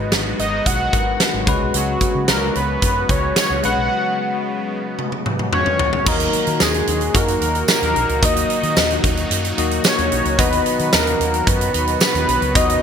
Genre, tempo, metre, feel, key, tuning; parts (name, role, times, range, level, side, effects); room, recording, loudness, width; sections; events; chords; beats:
1980s-style pop; 111 BPM; 4/4; straight; Eb minor; A4 = 440 Hz
fat analog lead; melody; 0.0-12.8 s; Gb4 to Gb5; -21 LUFS; equal; chorus, digital delay
bell-like tine electric piano; accompaniment; 0.0-12.8 s; Ab3 to Eb5; -25 LUFS; left 6 dB; wide subtle chorus
sweeping resonant pad; sustained chords; 0.0-12.8 s; Bb2 to Gb4; -27 LUFS; right 1 dB; chorus
vintage muted fingered electric bass; bass; 0.0-12.8 s; Ab1 to Eb3; -24 LUFS; equal
huge arena drum kit; drums; 0.1-12.8 s; crash cymbal, hi-hat, kick drum, snare drum, tambourine, toms; -19 LUFS; right 1 dB
tambourine; percussion; 2.3-12.1 s; -30 LUFS; right 12 dB
funky polysynth comp; stabs; 7.1-12.8 s; Bb3 to D#5; -29 LUFS; equal
moderate plate reverb, RT60 2.0 s; bright 1980s-style digital production; -15 LUFS; side -7 dB against mid
0.0-6.1 A section; 6.1-12.8 B section
break 3.9-6.1; drum fill 5.0-6.1
0.0 Abm7; 1.5 Db7sus4; 6.1 Ebm; 10.4 B
0.12 0.66 1.20 | 1.74 2.28 2.82 3.36 | 3.90 4.44 4.98 5.53 | 6.07 6.61 7.15 7.69 | 8.23 8.77 9.31 9.85 | 10.39 10.93 11.47 12.01 | 12.55